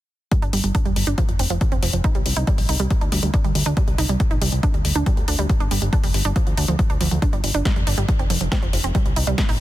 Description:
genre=uplifting trance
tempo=139 BPM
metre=4/4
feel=straight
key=G minor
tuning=A4 = 440 Hz
part: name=wide unison pluck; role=arpeggios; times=0.3-9.5 s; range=F3 to Eb4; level=-26 LUFS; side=right 4 dB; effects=sidechain pumping, digital delay
part: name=electronic kick drum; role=drums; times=0.3-9.5 s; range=none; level=-21 LUFS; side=equal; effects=none
part: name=house drum kit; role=drums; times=0.3-9.6 s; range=hi-hat, snare drum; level=-27 LUFS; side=left 2 dB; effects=none
part: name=fat analog bass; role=bass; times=0.4-9.6 s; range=F1 to D2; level=-23 LUFS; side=equal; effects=sidechain pumping
room=little or no reverb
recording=dense, heavily limited modern master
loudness=-18 LUFS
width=side -15 dB against mid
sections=0.3-9.6 A section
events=none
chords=0.3 G5; 1.2 F5; 2.0 C5; 2.9 Dsus4; 3.8 C5; 4.6 Dsus4; 5.5 G5; 6.4 Dm; 7.2 G5; 8.1 F5; 8.9 C5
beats=| 0.32 0.75 1.18 1.61 | 2.04 2.47 2.90 3.34 | 3.77 4.20 4.63 5.06 | 5.50 5.93 6.36 6.79 | 7.22 7.65 8.09 8.52 | 8.95 9.38

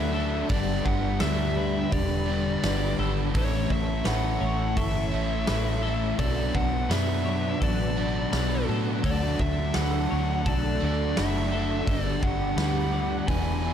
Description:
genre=rock, shoegaze and dream pop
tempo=84 BPM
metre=4/4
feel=straight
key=unclear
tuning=A4 = 440 Hz
part: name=fuzz lead guitar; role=melody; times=0.0-13.7 s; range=C#5 to G#5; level=-32 LUFS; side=left 1 dB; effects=distortion, tape echo
part: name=phased analog pad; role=sustained chords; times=0.0-13.7 s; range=D4 to C#6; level=-36 LUFS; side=right 1 dB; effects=phaser, chorus
part: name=twelve-string electric guitar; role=arpeggios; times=0.0-13.7 s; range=G4 to D5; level=-39 LUFS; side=left 6 dB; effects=wide subtle chorus, tape echo
part: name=overdriven semi-hollow guitar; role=riff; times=0.0-13.7 s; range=G2 to G#4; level=-32 LUFS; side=right 11 dB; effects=reverse reverb
part: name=thick fuzz guitar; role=riff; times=0.0-13.7 s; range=E2 to D4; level=-31 LUFS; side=left 10 dB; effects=distortion, analog chorus
part: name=vintage muted fingered electric bass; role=bass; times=0.0-13.7 s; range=E1 to A2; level=-29 LUFS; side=equal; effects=none
part: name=big rock drum kit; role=drums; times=0.5-13.4 s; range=hi-hat, kick drum, snare drum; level=-31 LUFS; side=right 1 dB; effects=none
room=light reverb, studio reverb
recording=dark, warm production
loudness=-23 LUFS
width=side -9 dB against mid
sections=0.0-13.7 A section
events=none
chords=0.0 D; 0.5 Gmaj7; 3.4 A; 6.2 Bm; 9.0 D; 11.9 Gmaj7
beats=| 0.50 1.21 1.93 2.64 | 3.35 4.06 4.77 5.48 | 6.19 6.90 7.62 8.32 | 9.03 9.74 10.45 11.16 | 11.87 12.58 13.28

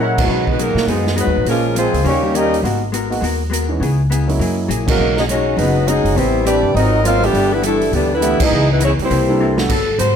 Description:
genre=jazz, big band swing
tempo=204 BPM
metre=4/4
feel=swing 61% on 8ths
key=unclear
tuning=A4 = 438 Hz
part: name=clear concert grand piano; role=accompaniment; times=0.0-9.7 s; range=E3 to B4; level=-22 LUFS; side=right 2 dB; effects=none
part: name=vintage hollow-body jazz guitar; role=accompaniment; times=0.0-10.2 s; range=G2 to B4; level=-24 LUFS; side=left 5 dB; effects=none
part: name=upright bass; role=bass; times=0.0-10.2 s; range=F#1 to B2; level=-19 LUFS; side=equal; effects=none
part: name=clear saxophone section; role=melody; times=0.2-2.6, 4.9-10.2 s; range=Eb3 to E#5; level=-18 LUFS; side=left 2 dB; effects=plate reverb
part: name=bright trombone section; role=second line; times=0.2-2.6, 4.9-9.6 s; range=Ab2 to E#4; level=-20 LUFS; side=right 3 dB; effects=none
part: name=swinging big-band drum kit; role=drums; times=0.2-10.1 s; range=crash cymbal, hi-hat, kick drum, snare drum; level=-24 LUFS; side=right 2 dB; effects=none
room=moderate large studio reverb, RT60 0.9 s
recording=none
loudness=-14 LUFS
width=side -8 dB against mid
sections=0.3-9.7 A section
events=drum fill 0.0, 9.4; band accent 0.1, 4.8, 8.4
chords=0.3 B6; 1.5 A#m7; 2.1 D#7; 2.6 G#m9; 3.8 C#m7; 4.4 F#9; 5.0 B69; 6.2 Am9; 6.8 G#13; 7.3 G6; 8.5 C#m9; 9.1 C13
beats=| 0.29 0.58 0.88 1.17 | 1.47 1.76 2.05 2.35 | 2.64 2.93 3.23 3.52 | 3.81 4.11 4.40 4.70 | 4.99 5.28 5.58 5.87 | 6.17 6.46 6.75 7.05 | 7.34 7.63 7.93 8.22 | 8.52 8.81 9.10 9.40 | 9.69 9.99

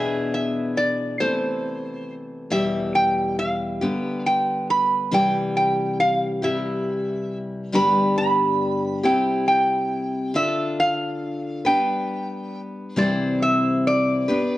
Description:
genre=acoustic folk duo or small band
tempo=46 BPM (dotted quarters)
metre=6/8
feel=straight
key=unclear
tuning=A4 = 439 Hz
part: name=metal-body resonator slide guitar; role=melody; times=0.0-14.6 s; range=C5 to B5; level=-22 LUFS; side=right 1 dB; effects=plate reverb
part: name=picked steel-string acoustic guitar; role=accompaniment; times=0.0-14.6 s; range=E2 to C5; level=-23 LUFS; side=left 1 dB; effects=none
room=moderate large studio reverb, RT60 0.9 s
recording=worn, warbling old tape, cassette tape, warbly pitch drift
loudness=-20 LUFS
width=side -15 dB against mid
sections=0.0-14.6 A section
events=none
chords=0.0 E7/B; 1.2 Am/C; 2.5 Em; 3.8 G/D; 5.1 C; 7.7 G; 9.0 C; 10.4 Dm; 11.7 G; 13.0 C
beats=1.20 | 2.51 3.81 | 5.12 6.43 | 7.73 9.04 | 10.35 11.66 | 12.97 14.28

